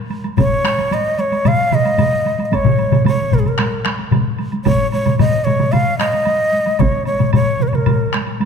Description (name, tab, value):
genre	japanese traditional, taiko drum ensemble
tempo	112 BPM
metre	4/4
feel	straight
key	Eb suspended pentatonic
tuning	A4 = 440 Hz
part	taiko ensemble	percussion	0.1-8.5 s	none	-23 LUFS	right 2 dB	none
part	woodblock	percussion	0.1-8.5 s	none	-32 LUFS	right 5 dB	none
part	mellow shakuhachi	melody	0.4-8.1 s	Ab4 to F5	-18 LUFS	equal	none
part	solo taiko drums	percussion	0.4-8.3 s	none	-20 LUFS	right 7 dB	none
part	taiko ensemble	percussion	0.4-8.3 s	none	-19 LUFS	left 7 dB	none
part	taiko ensemble	percussion	0.4-6.9 s	none	-24 LUFS	equal	none
room	wet concert hall reverb, RT60 2.2 s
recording	none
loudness	-14 LUFS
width	side -6 dB against mid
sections	0.0-8.5 A section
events	none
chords	none